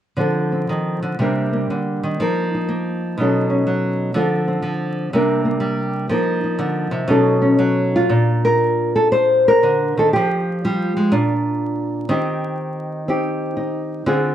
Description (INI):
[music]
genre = solo jazz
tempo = 121 BPM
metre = 4/4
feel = swing 67% on 8ths, rubato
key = Bb major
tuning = A4 = 440 Hz
[part]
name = nylon-string guitar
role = solo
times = 0.2-14.3 s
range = Bb2 to C5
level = -17 LUFS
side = equal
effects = none
[sound]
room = moderate echo chamber reverb, RT60 1.4 s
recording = vinyl crackle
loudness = -17 LUFS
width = side -10 dB against mid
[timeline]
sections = 0.2-8.1 A section; 8.1-14.3 B section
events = none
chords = 0.2 Dm7; 1.2 Cm9; 2.2 F7sus4; 3.2 B9; 4.2 Dm7; 5.1 Csus2; 6.1 F7sus4; 7.1 B9; 8.1 Bb; 10.1 Fm; 11.1 Bb; 12.1 Eb6